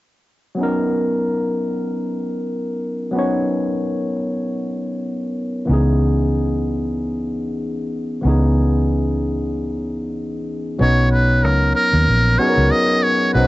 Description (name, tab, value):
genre	R&B, neo-soul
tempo	94 BPM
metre	4/4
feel	swing 54% on 16ths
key	unclear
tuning	A4 = 440 Hz
part	barky tine electric piano	accompaniment	0.5-13.5 s	E3 to C#5	-20 LUFS	left 1 dB	overdrive, wide subtle chorus, cassette tape
part	vintage muted fingered electric bass	bass	5.7-13.5 s	A#1 to D#2	-18 LUFS	equal	transformer saturation
part	trumpet with metal mute	melody	10.8-13.5 s	A#4 to D#5	-17 LUFS	equal	cassette tape
room	moderate small room reverb, RT60 0.5 s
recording	home recording on cassette, nothing above 7.9 kHz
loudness	-17 LUFS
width	side -18 dB against mid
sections	0.6-10.8 A section; 10.8-13.5 B section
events	none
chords	0.6 Bmaj9; 5.7 C#m9; 10.8 Bmaj9